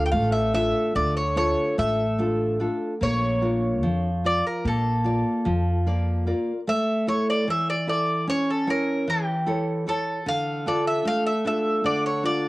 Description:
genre	greek folk, Greek bouzouki band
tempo	149 BPM (eighths)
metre	9/8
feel	straight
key	A phrygian dominant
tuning	A4 = 440 Hz
part	Greek bouzouki	melody	0.0-12.5 s	G4 to G5	-25 LUFS	equal	cassette tape
part	nylon-string guitar	accompaniment	0.0-12.5 s	D3 to E5	-25 LUFS	equal	cassette tape
part	upright bass	bass	0.0-6.3 s	A1 to F2	-26 LUFS	equal	none
room	light reverb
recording	home recording on cassette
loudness	-21 LUFS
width	side -20 dB against mid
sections	0.0-6.7 A section; 6.7-12.5 B section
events	speeding up 0.0-12.5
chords	0.0 Dm; 3.0 Bb; 6.7 A; 10.3 Dm

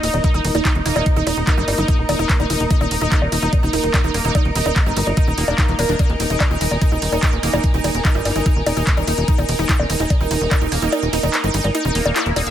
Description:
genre	psychedelic trance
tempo	146 BPM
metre	4/4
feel	straight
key	unclear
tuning	A4 = 440 Hz
part	evolving wavetable pad	sustained chords	0.1-12.5 s	Bb4	-26 LUFS	right 2 dB	ensemble chorus, built-in reverb, phaser, sidechain pumping
part	wide unison pluck	riff	0.0-12.5 s	D4 to Fb5	-23 LUFS	moving between left 6 dB and right 8 dB	auto-pan, sidechain pumping, tape echo
part	tight sequencer bass	bass	0.0-12.5 s	Eb1 to G1	-21 LUFS	equal	tube saturation
part	drum and bass drum kit	drums	0.0-12.5 s	bongos, handclaps, hi-hat, ride cymbal	-23 LUFS	left 1 dB	overdrive
part	muted chamber string section	texture	0.0-12.5 s	Bb3 to Bb5	-28 LUFS	left 2 dB	sidechain pumping
part	electronic kick drum	drums	0.2-10.6 s	none	-16 LUFS	equal	none
part	metallic wobble bass	second line	0.9-12.5 s	G3 to Eb4	-31 LUFS	right 2 dB	chorus, sidechain pumping, high-pass filter, ping-pong delay
room	light reverb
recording	none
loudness	-15 LUFS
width	side -11 dB against mid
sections	0.0-12.5 A section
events	kick drops out 10.9-12.5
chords	0.0 Eb5

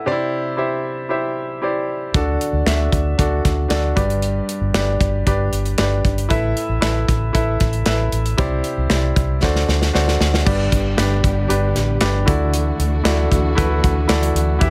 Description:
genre	piano-driven pop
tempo	115 BPM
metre	4/4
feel	straight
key	D mixolydian, D major from 10.5 s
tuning	A4 = 440 Hz
part	clear concert grand piano	accompaniment	0.0-14.7 s	G2 to E5	-23 LUFS	equal	none
part	vintage muted fingered electric bass	bass	2.1-14.7 s	G1 to E2	-22 LUFS	equal	none
part	modern studio drum kit	drums	2.1-14.7 s	crash cymbal, handclaps, hi-hat, kick drum, snare drum	-23 LUFS	equal	none
part	dark studio string section	sustained chords	10.5-14.7 s	D3 to G4	-29 LUFS	equal	none
room	light reverb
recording	none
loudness	-19 LUFS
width	mono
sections	0.0-10.5 A section; 10.5-14.7 B section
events	drum fill 9.4-10.5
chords	0.1 Cadd9; 2.1 D; 4.0 G; 6.3 Asus2; 8.4 Cadd9; 9.4 D7; 10.5 G; 12.3 Dadd9

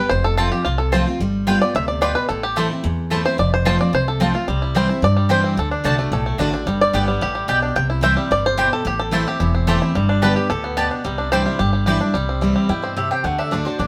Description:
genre	bluegrass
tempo	219 BPM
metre	4/4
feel	straight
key	C major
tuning	A4 = 442 Hz
part	bluegrass banjo	melody	0.0-13.9 s	G3 to G5	-24 LUFS	equal	none
part	picked steel-string acoustic guitar	accompaniment	0.0-13.9 s	E2 to G4	-24 LUFS	equal	none
part	upright bass	bass	0.0-13.9 s	E1 to G2	-26 LUFS	equal	none
part	mandolin	stabs	0.4-12.0 s	A3 to A5	-25 LUFS	equal	none
part	mandolin	melody	12.7-13.9 s	C5 to G5	-26 LUFS	equal	none
room	moderate stone room reverb, RT60 1.1 s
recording	band playing live in one room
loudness	-19 LUFS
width	mono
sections	0.0-12.1 A section; 12.1-13.9 B section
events	five-string banjo solo 0.0-12.1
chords	0.1 F; 1.2 G7; 2.3 Am; 3.4 F; 4.5 C; 5.6 D; 6.7 G; 7.8 C; 8.9 Am; 10.0 Gadd9; 11.1 Cadd9; 12.1 C; 13.2 D

